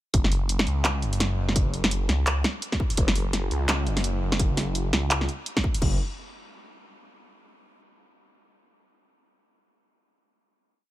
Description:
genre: half-time drum and bass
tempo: 169 BPM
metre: 4/4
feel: swing 58% on 16ths, half-time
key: unclear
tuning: A4 = 440 Hz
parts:
  - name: phased detuned saw bass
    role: bass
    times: 0.1-6.0 s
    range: F#1 to C#2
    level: -25 LUFS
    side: equal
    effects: phaser
  - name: drum and bass drum kit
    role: drums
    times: 0.1-5.9 s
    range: crash cymbal, handclaps, hi-hat, snare drum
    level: -26 LUFS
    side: equal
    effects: small room ambience
  - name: electronic kick drum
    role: drums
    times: 0.1-5.9 s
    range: none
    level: -25 LUFS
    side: equal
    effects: small room ambience
room: little or no reverb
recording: none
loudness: -22 LUFS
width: side -15 dB against mid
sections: 0.1-5.8 drop; 5.8-7.2 final note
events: drop 0.1-5.8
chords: none

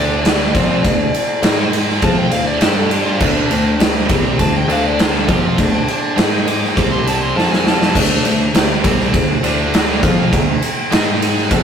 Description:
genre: hard rock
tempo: 101 BPM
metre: 4/4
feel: straight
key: D minor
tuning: A4 = 440 Hz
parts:
  - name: smooth overdriven lead guitar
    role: melody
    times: 0.0-7.9 s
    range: D4 to D6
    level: -22 LUFS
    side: left 1 dB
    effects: analog delay
  - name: cranked stack guitar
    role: riff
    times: 0.0-11.6 s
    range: C3 to G#4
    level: -23 LUFS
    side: left 6 dB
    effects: overdrive
  - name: scooped high-gain guitar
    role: riff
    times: 0.0-11.6 s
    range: C3 to G#4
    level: -22 LUFS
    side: right 5 dB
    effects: distortion
  - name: picked electric bass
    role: bass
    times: 0.0-11.6 s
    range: C2 to G#2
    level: -20 LUFS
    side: left 1 dB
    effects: none
  - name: big rock drum kit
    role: drums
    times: 0.2-11.6 s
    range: crash cymbal, kick drum, ride cymbal, snare drum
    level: -15 LUFS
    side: right 1 dB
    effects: none
room: moderate small room reverb, RT60 0.5 s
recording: rough rehearsal-room recording, tube saturation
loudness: -13 LUFS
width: side -7 dB against mid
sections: 0.0-7.9 A section; 7.9-11.6 B section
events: lead electric guitar solo 0.0-7.9; drum fill 7.3-7.9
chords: 0.0 Dm; 1.4 G#5; 2.0 Dm; 2.6 G5; 3.2 Dm; 6.2 G#5; 6.8 C5; 7.3 F5; 7.9 Dm; 10.9 G#5

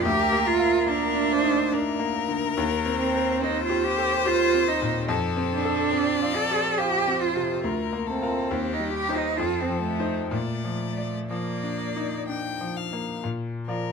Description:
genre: classical, slow romantic movement for piano trio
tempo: 60-74 BPM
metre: 3/4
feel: rubato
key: Bb major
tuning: A4 = 440 Hz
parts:
  - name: rich violin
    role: melody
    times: 0.0-13.9 s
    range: G4 to G5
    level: -30 LUFS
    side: left 8 dB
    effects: none
  - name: rich cello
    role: second line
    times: 0.0-12.8 s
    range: A3 to A4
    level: -25 LUFS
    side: right 5 dB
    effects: none
  - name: bright concert grand piano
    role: accompaniment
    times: 0.0-13.9 s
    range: D2 to D5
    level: -28 LUFS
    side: left 2 dB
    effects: none
room: moderate small room reverb, RT60 0.5 s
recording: none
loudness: -22 LUFS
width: side -5 dB against mid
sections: 0.0-13.2 A section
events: none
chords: 0.1 Bb/D; 2.6 Cm7/Eb; 5.1 F; 7.6 Bb/D; 8.5 Cm/Eb; 9.4 F7; 10.3 Bb

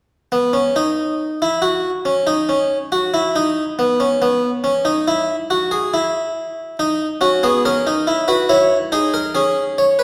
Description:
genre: classical, baroque-style 3-part fugue for harpsichord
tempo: 70 BPM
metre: 4/4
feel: straight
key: unclear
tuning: A4 = 437 Hz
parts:
  - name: harpsichord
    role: solo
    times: 0.3-10.0 s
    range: B3 to C#5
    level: -18 LUFS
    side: equal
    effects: none
room: wet recital hall reverb, RT60 1.7 s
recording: recorded in a church or concert hall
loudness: -18 LUFS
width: mono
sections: 0.0-10.0 A section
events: none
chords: 0.0 N.C.; 6.8 B; 8.5 C#m

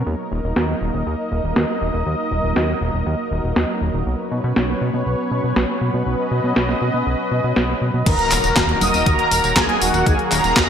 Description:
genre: italo disco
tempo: 120 BPM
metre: 4/4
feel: straight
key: Eb minor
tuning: A4 = 441 Hz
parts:
  - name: lush unison pad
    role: sustained chords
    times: 0.0-10.7 s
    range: Eb3 to Eb5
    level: -22 LUFS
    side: equal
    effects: chorus
  - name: fat analog bass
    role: bass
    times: 0.0-10.7 s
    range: Eb1 to B2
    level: -22 LUFS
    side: equal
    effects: none
  - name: clean 12-bit digital drum machine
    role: drums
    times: 0.6-10.7 s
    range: congas, crash cymbal, handclaps, hi-hat, snare drum, tambourine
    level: -20 LUFS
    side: equal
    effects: overdrive, low-pass filter on snare, low-pass filter on hats, low-pass filter on cymbals, low-pass filter on perc, low-pass filter on room, gated reverb
  - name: mellow synth brass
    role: melody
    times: 8.1-10.7 s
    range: Gb4 to Eb6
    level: -19 LUFS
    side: equal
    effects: chorus, cassette tape, ping-pong delay
  - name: electronic kick drum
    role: drums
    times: 8.1-10.7 s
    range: none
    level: -20 LUFS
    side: equal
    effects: overdrive
  - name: impact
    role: sound effects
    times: 8.1-10.1 s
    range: none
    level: -32 LUFS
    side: equal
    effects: none
room: moderate lush hall reverb, RT60 1.6 s, digital ambience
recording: bright 1980s-style digital production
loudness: -17 LUFS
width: side -8 dB against mid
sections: 0.0-8.1 A section; 8.1-10.7 B section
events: filter sweep on analog synth pad 0.0-8.1; impact 8.1-10.1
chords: 0.1 Ebm; 4.1 Bsus2; 8.1 Ebm

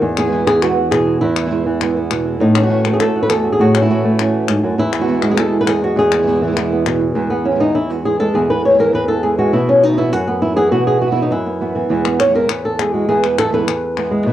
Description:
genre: flamenco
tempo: 202 BPM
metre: 4/4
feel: straight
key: E major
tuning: A4 = 439 Hz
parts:
  - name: flamenco guitar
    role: melody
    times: 0.0-14.3 s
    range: E2 to C#5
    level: -14 LUFS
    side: equal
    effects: cassette tape, plate reverb
  - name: flamenco guitar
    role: stabs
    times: 0.0-14.3 s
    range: E2 to F#4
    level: -21 LUFS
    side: right 5 dB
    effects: cassette tape, plate reverb
  - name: palmas hand claps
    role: percussion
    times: 0.2-7.0, 12.1-14.1 s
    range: none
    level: -23 LUFS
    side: left 10 dB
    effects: none
room: wet small room reverb, RT60 0.6 s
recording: home recording on cassette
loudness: -13 LUFS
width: side -12 dB against mid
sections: 0.0-7.2 A section; 7.2-14.3 B section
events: nylon-string guitar solo 7.2-14.3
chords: 0.0 E; 2.4 A6; 4.8 E; 9.5 Bsus4; 11.9 E

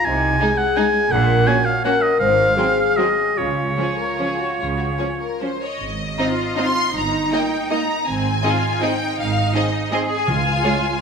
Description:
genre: classical, orchestral ballroom waltz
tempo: 141-182 BPM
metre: 3/4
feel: rubato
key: Db major, Ab major from 5.8 s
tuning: A4 = 442 Hz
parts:
  - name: clear oboe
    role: second line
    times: 0.0-5.4 s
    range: Db5 to Ab5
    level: -20 LUFS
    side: right 1 dB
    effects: none
  - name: warm French horn section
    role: sustained chords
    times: 0.0-10.8 s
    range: Ab3 to C5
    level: -23 LUFS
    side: left 4 dB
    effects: none
  - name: clear chamber double bass section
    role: bass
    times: 0.1-10.6 s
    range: G1 to Db2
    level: -26 LUFS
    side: right 4 dB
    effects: none
  - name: rich symphonic cello section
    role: bass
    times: 0.1-11.0 s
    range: Ab2 to Ab4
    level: -25 LUFS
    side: right 3 dB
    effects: none
  - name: clear symphonic violin section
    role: melody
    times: 0.4-11.0 s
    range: F4 to C6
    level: -25 LUFS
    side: left 2 dB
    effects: none
  - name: rich studio violin section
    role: second line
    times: 0.4-10.7 s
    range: C4 to Eb5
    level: -28 LUFS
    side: left 1 dB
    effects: none
  - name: clear symphonic viola section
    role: accompaniment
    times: 0.4-10.7 s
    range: F3 to F4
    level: -27 LUFS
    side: right 1 dB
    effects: none
  - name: timpani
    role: percussion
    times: 10.3-10.8 s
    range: Db3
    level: -24 LUFS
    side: left 1 dB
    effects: none
room: wet scoring stage reverb, RT60 1.5 s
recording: minimal, uncompressed stereo recording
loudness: -17 LUFS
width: side -6 dB against mid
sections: 0.0-5.8 A section; 5.8-11.0 B section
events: none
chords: 0.0 Ab/C; 1.1 Gb/Bb; 2.2 Ab7; 3.4 Db; 5.8 Ab; 6.9 Eb/G; 8.1 Ab; 10.3 Db

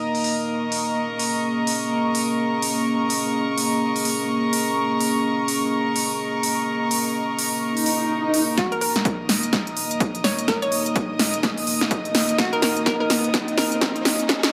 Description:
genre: bass house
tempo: 126 BPM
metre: 4/4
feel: swing 60% on 16ths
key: unclear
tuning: A4 = 440 Hz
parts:
  - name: dark analog pad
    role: sustained chords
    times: 0.0-14.5 s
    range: Bb3 to Eb5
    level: -28 LUFS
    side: equal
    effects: chorus, sidechain pumping
  - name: warm studio string section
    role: texture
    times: 0.0-14.5 s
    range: Bb3 to Eb6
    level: -27 LUFS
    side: equal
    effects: sidechain pumping
  - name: big-room dance drum kit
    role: drums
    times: 0.1-14.5 s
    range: hi-hat, snare drum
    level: -26 LUFS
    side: equal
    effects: overdrive, low-pass filter on hats, low-pass filter on snare, low-pass filter on room
  - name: swell and riser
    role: sound effects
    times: 7.8-14.5 s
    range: none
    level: -32 LUFS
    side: equal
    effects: none
  - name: hollow square pluck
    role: melody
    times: 8.6-13.8 s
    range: Gb4 to Db5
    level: -28 LUFS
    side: equal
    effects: subtle chorus, digital delay
  - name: electronic kick drum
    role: drums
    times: 8.6-14.4 s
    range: none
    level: -29 LUFS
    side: equal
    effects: overdrive, high-pass filter on kick, high-pass filter on room
room: moderate plate reverb, RT60 2.1 s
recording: high-pass filter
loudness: -22 LUFS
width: mono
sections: 0.0-8.6 A section; 8.6-14.5 B section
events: swell 7.8-8.6; build-up 8.6-14.5; drum fill 8.6-14.5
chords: 0.0 Eb5

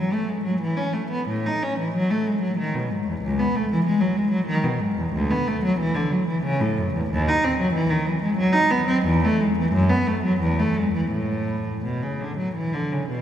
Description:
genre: classical, baroque-style suite movement for unaccompanied cello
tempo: 81-98 BPM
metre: 3/4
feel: rubato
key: A major from 5.1 s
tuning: A4 = 439 Hz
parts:
  - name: rich cello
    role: solo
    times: 0.0-13.2 s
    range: C#2 to D#4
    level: -20 LUFS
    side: equal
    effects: none
room: wet cathedral reverb, RT60 4.7 s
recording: heard from further back in the room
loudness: -20 LUFS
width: side -10 dB against mid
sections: 0.0-13.2 A section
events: none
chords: none

